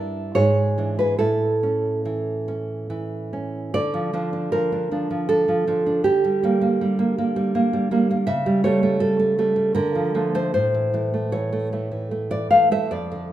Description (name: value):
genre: romantic piece for solo classical guitar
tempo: 69-82 BPM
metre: 3/4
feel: rubato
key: D minor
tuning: A4 = 440 Hz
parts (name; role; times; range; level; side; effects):
- nylon-string guitar; solo; 0.0-13.3 s; F2 to F5; -19 LUFS; right 1 dB; none
room: moderate recital hall reverb, RT60 1.6 s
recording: minimal, uncompressed stereo recording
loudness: -19 LUFS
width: side -12 dB against mid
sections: 0.0-3.7 A section; 3.7-13.3 B section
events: none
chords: 0.4 E7/G#; 1.2 A; 3.7 Dm; 6.0 Gm/D; 8.3 A7/C#; 9.8 Dm; 10.5 A